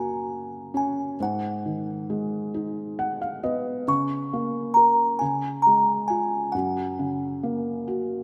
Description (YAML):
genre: children's music, lullaby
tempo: 45 BPM (dotted quarters)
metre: 6/8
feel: rubato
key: F# major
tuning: A4 = 442 Hz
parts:
  - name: music box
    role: melody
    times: 0.0-8.2 s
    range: F#5 to C#6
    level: -25 LUFS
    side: equal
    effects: none
  - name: felt-muted upright piano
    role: accompaniment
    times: 0.0-8.2 s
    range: F#2 to F#5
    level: -30 LUFS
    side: equal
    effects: none
room: moderate lush hall reverb, RT60 2.2 s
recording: rough home demo mix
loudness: -25 LUFS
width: mono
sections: 0.0-8.2 A section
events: felt piano fill 2.5-3.9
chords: 0.0 F#add9; 1.2 G#m; 3.9 A#m/C#; 5.2 C#; 6.5 F#